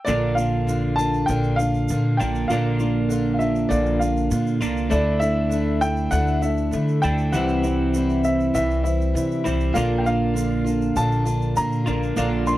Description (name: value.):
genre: folk rock and heartland rock.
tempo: 99 BPM.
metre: 4/4.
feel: straight.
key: unclear.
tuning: A4 = 440 Hz.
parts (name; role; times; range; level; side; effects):
dark grand piano; melody; 0.0-12.6 s; D5 to C6; -26 LUFS; equal; none.
barky reed electric piano; accompaniment; 0.1-12.6 s; E4 to D5; -35 LUFS; right 4 dB; overdrive, fast tremolo.
picked steel-string acoustic guitar; accompaniment; 0.1-12.6 s; Bb2 to F4; -28 LUFS; left 5 dB; none.
twelve-string electric guitar; riff; 0.1-12.6 s; Bb2 to F4; -24 LUFS; right 2 dB; none.
upright bass; bass; 0.1-12.6 s; Bb1 to D3; -24 LUFS; equal; none.
egg shaker; percussion; 0.1-12.6 s; none; -42 LUFS; right 7 dB; none.
room: little or no reverb.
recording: dry, close 1970s-style studio recording.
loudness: -19 LUFS.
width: side -15 dB against mid.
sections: 0.1-12.6 A section.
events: none.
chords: 0.1 Bb; 4.9 Dsus2; 7.3 C; 9.8 Bb.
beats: | 0.07 0.68 1.29 1.89 | 2.50 3.10 3.71 4.32 | 4.92 5.53 6.13 6.74 | 7.34 7.94 8.55 9.15 | 9.76 10.36 10.96 11.57 | 12.17.